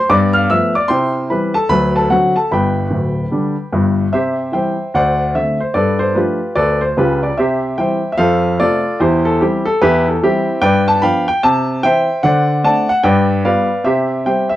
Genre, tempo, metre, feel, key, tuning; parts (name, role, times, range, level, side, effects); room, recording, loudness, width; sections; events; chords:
jazz, stride piano; 148 BPM; 4/4; swing 63% on 8ths; C major; A4 = 440 Hz
warm baby grand piano; solo; 0.0-14.6 s; D1 to F6; -13 LUFS; equal
light reverb; -13 LUFS; side -14 dB against mid
0.0-4.1 A section; 4.1-14.6 B section
0.1 G9; 0.9 C; 1.7 D7; 2.5 G; 4.1 C; 4.9 D7; 5.8 G9; 7.4 C; 8.2 F; 9.0 C/E; 10.6 G7; 11.4 C; 12.2 D7; 13.0 G7; 13.9 C